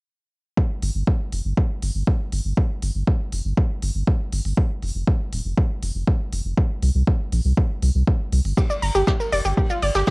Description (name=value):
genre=melodic techno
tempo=120 BPM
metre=4/4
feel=straight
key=unclear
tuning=A4 = 438 Hz
part: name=electronic kick drum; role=drums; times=0.6-10.1 s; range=none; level=-19 LUFS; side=equal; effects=studio reverb
part: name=round analog bass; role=bass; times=0.8-10.0 s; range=Eb1 to C2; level=-21 LUFS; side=equal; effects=sidechain pumping
part: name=electronic hi-hat and shaker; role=drums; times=0.8-10.1 s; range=none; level=-35 LUFS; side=equal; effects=studio reverb
part: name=wide unison pluck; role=arpeggios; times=8.6-10.1 s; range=F4 to Bb5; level=-22 LUFS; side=equal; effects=cassette tape, sidechain pumping, analog delay
part: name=jazz brush drum kit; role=drums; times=8.6-10.1 s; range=ride cymbal, snare drum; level=-33 LUFS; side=left 1 dB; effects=sidechain pumping on cymbals, high-pass filter on cymbals, studio reverb, high-pass filter on snare, high-pass filter on room
room=little or no reverb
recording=home recording on cassette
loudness=-20 LUFS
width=side -27 dB against mid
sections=0.6-10.1 A section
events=filter sweep on analog synth bass 0.6-10.1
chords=0.6 N.C.; 6.6 C5; 8.6 Gm